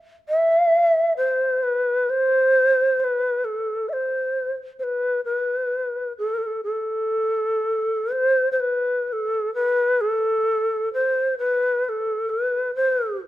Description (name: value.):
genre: japanese traditional, Japanese chamber music.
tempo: 66 BPM.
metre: 4/4.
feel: rubato.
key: A minor.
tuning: A4 = 440 Hz.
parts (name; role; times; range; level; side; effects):
mellow long shakuhachi; solo; 0.3-13.2 s; A4 to E5; -20 LUFS; equal; none.
room: light reverb.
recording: close, detailed microphones.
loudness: -20 LUFS.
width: side -14 dB against mid.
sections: 0.0-8.1 A section; 8.1-13.3 B section.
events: none.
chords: none.